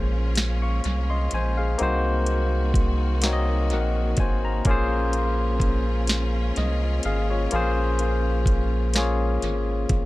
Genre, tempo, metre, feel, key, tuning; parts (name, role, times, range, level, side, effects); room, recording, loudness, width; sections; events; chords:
slow six-eight R&B; 42 BPM (dotted quarters); 6/8; straight; Bb minor; A4 = 440 Hz
barky tine electric piano; accompaniment; 0.0-10.1 s; Bb3 to Db6; -26 LUFS; left 3 dB; overdrive, tape echo
bright studio string section; sustained chords; 0.0-10.1 s; Eb3 to Gb4; -35 LUFS; equal
rubbery square bass; bass; 0.0-10.1 s; Ab1 to C2; -24 LUFS; equal
smooth R&B drum kit; drums; 0.4-10.1 s; hi-hat, kick drum, snare drum; -24 LUFS; equal; vintage 12-bit sampler grit, tape echo
little or no reverb; echo-heavy mix; -21 LUFS; side -18 dB against mid
0.0-10.1 A section
0.0 Bbm9; 1.8 Cm7b5; 4.7 Bbm9